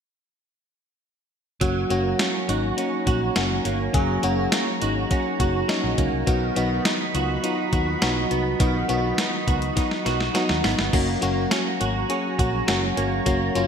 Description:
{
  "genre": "1980s-style pop",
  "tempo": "103 BPM",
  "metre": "4/4",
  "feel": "straight",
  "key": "F# major",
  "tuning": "A4 = 439 Hz",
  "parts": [
    { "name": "FM electric piano", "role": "accompaniment", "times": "1.6-13.7 s", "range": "F#3 to G#4", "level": "-24 LUFS", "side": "left 3 dB", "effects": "chorus" },
    { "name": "lush unison pad", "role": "sustained chords", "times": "1.6-13.7 s", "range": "F#4 to B5", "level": "-31 LUFS", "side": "right 2 dB", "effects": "chorus" },
    { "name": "direct-recorded clean electric guitar", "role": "riff", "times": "1.6-13.7 s", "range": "D#3 to F#4", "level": "-29 LUFS", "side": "right 7 dB", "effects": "ensemble chorus, ping-pong delay" },
    { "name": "vintage muted fingered electric bass", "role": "bass", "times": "1.6-13.7 s", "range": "F#1 to D#2", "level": "-28 LUFS", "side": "equal", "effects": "none" },
    { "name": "clean 12-bit digital drum machine", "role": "drums", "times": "1.6-13.7 s", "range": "crash cymbal, hi-hat, kick drum, snare drum", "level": "-25 LUFS", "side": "equal", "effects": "gated reverb" }
  ],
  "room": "wet lush hall reverb, RT60 1.9 s, digital ambience",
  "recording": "bright 1980s-style digital production",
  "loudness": "-20 LUFS",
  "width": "side -7 dB against mid",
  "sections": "1.6-13.7 A section",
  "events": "drum fill 9.8-10.9",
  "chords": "1.6 F#; 6.3 B; 10.9 F#"
}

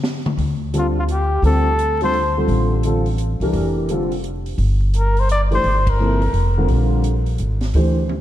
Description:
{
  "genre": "modal jazz",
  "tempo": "171 BPM",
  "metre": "3/4",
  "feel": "swing 64% on 8ths",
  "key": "D minor",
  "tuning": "A4 = 440 Hz",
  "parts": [
    { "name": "open jazz drum kit", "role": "drums", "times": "0.0-8.2 s", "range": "hi-hat, kick drum, ride cymbal, snare drum, toms", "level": "-28 LUFS", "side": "left 1 dB", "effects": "none" },
    { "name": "upright bass", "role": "bass", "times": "0.4-8.2 s", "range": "F1 to D2", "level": "-18 LUFS", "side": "equal", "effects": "none" },
    { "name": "dark baby grand piano", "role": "accompaniment", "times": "0.7-8.0 s", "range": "C3 to C5", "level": "-22 LUFS", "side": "equal", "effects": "lush chorus" },
    { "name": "breathy trumpet", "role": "melody", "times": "0.8-2.4, 5.0-6.6 s", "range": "F4 to D5", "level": "-21 LUFS", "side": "left 1 dB", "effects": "analog delay" }
  ],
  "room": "moderate lush hall reverb, RT60 1.8 s, small room ambience",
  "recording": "dreamy mix soaked in reverb, vinyl crackle",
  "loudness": "-16 LUFS",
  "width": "side -13 dB against mid",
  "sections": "0.4-8.2 A section",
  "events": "band accent 5.8",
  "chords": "0.4 Dm11; 4.6 Gm11"
}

